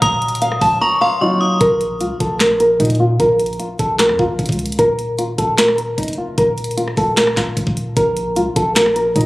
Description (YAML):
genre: hip hop, trap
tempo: 151 BPM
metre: 4/4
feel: half-time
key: unclear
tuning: A4 = 441 Hz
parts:
  - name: nylon-string guitar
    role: melody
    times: 0.0-9.3 s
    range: Eb4 to Bb5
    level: -16 LUFS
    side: equal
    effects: low-pass filter
  - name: metallic FM bell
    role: second line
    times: 0.0-1.6 s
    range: C6 to Eb6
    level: -20 LUFS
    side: left 1 dB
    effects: chorus, ping-pong delay
  - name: warm concert grand piano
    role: accompaniment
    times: 0.0-1.6 s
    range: Gb3 to F4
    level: -21 LUFS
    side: equal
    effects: low-pass filter
  - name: long sustained 808-style bass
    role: bass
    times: 0.0-9.3 s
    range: Eb1 to Bb2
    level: -23 LUFS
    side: equal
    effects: none
  - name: trap drum kit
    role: drums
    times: 0.0-9.3 s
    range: handclaps, hi-hat, kick drum, rim click, snare drum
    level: -19 LUFS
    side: equal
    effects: none
room: light reverb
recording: recorded on a phone in the room, club reverb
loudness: -14 LUFS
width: side -19 dB against mid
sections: 0.0-1.6 A section; 1.6-9.3 B section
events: drums muted 0.8-1.6; filter sweep 1.6-9.3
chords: 0.0 Ebmadd9; 1.6 Bbm; 4.8 Ebmadd9; 8.0 N.C.